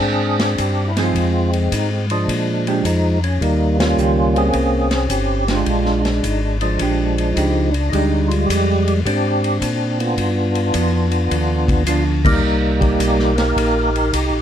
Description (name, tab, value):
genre	soul jazz organ trio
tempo	106 BPM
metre	4/4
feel	swing 67% on 8ths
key	Bb mixolydian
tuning	A4 = 439 Hz
part	percussive tonewheel organ	melody	0.0-14.4 s	F3 to Bb4	-19 LUFS	right 1 dB	slow rotary speaker, chorus vibrato
part	mellow tonewheel organ	bass	0.0-14.4 s	G1 to Bb2	-20 LUFS	left 1 dB	slow rotary speaker
part	vintage drum kit	drums	0.4-14.3 s	crash cymbal, hi-hat, kick drum, ride cymbal, snare drum	-24 LUFS	left 1 dB	none
part	hollow-body jazz guitar	accompaniment	1.0-12.2 s	Eb3 to C5	-23 LUFS	right 5 dB	none
room	light reverb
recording	none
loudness	-15 LUFS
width	side -10 dB against mid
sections	0.0-14.4 A section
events	band accent 3.7, 12.1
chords	0.0 Fm13; 1.1 Fm7; 2.3 Bb6; 3.4 Eb13; 5.7 Bb13; 10.2 G7; 12.4 Cm7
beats	0.02 0.58 | 1.15 1.71 2.27 2.84 | 3.40 3.97 4.53 5.10 | 5.66 6.23 6.79 7.36 | 7.92 8.48 9.05 9.61 | 10.17 10.74 11.30 11.87 | 12.43 12.99 13.56 14.12